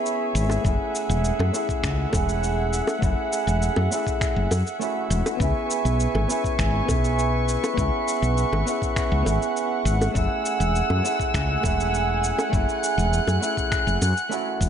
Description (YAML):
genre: sunset chillout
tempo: 101 BPM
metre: 4/4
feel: straight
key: F# minor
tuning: A4 = 439 Hz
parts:
  - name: electric guitar at the edge of break-up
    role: accompaniment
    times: 0.0-14.7 s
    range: A3 to G#4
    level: -26 LUFS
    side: moving between left 4 dB and right 6 dB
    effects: auto-pan, low-pass filter, ping-pong delay
  - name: dark chamber string section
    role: sustained chords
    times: 0.0-14.7 s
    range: A3 to F#6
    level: -27 LUFS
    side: equal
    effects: none
  - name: electronic shaker and finger snaps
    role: drums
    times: 0.1-14.7 s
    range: none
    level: -33 LUFS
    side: equal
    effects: studio ambience
  - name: woody fretless electric bass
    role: bass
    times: 0.3-14.7 s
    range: E1 to F#2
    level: -23 LUFS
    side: equal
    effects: none
  - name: bongos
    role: percussion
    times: 0.5-14.1 s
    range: none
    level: -30 LUFS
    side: equal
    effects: none
  - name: electronic kick drum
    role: drums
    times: 0.6-14.7 s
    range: none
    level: -27 LUFS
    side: equal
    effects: studio ambience
room: light reverb, digital ambience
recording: nothing above 10.6 kHz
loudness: -21 LUFS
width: side -8 dB against mid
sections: 0.0-14.7 A section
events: filter sweep on clean electric guitar 0.0-14.7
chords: 0.0 C#m7; 0.6 F#m9; 5.4 C#m7; 10.2 F#m9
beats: 0.05 | 0.65 1.24 1.84 2.43 | 3.02 3.62 4.21 4.81 | 5.40 5.99 6.59 7.18 | 7.78 8.37 8.96 9.56 | 10.15 10.75 11.34 11.94 | 12.53 13.12 13.72 14.31